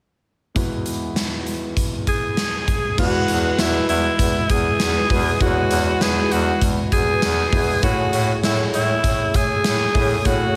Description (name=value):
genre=1980s-style pop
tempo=99 BPM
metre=4/4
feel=straight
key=E major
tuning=A4 = 441 Hz
part: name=warm concert grand piano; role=accompaniment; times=0.5-10.6 s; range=E2 to C#5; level=-28 LUFS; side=equal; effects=none
part: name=big rock drum kit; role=drums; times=0.6-10.4 s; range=crash cymbal, hi-hat, kick drum, snare drum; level=-24 LUFS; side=equal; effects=none
part: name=raspy alto saxophone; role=melody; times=2.1-10.6 s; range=E4 to G#4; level=-24 LUFS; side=equal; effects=tape echo
part: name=mellow synth brass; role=stabs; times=3.0-10.6 s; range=G#3 to C#5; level=-31 LUFS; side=equal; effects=none
part: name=bright bass clarinet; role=bass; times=3.0-10.5 s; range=E2 to A2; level=-27 LUFS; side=equal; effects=none
room=moderate lush hall reverb, RT60 2.8 s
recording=big arena sound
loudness=-20 LUFS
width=mono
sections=0.6-3.0 A section; 3.0-10.6 B section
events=none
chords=0.6 Eadd9; 2.7 N.C.; 3.0 Eadd9; 7.8 Amaj7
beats=| 0.56 1.16 1.77 2.38 | 2.98 3.59 4.19 4.80 | 5.41 6.01 6.62 7.22 | 7.83 8.44 9.04 9.65 | 10.25